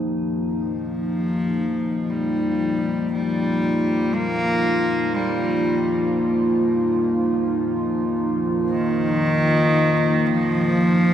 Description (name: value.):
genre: dark ambient drone.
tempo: free time.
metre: none.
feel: none.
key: unclear.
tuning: A4 = 439 Hz.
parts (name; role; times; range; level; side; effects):
dark analog pad; sustained chords; 0.0-11.1 s; F3 to G4; -20 LUFS; equal; lush chorus.
rich cello; melody; 0.5-11.1 s; Eb3 to Bb3; -23 LUFS; equal; shimmer reverb, tape echo.
room: wet cathedral reverb, RT60 5.0 s.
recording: none.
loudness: -19 LUFS.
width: side -10 dB against mid.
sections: 0.0-11.1 A section.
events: fade-in on cello 0.0-11.1.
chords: 0.0 Fsus2.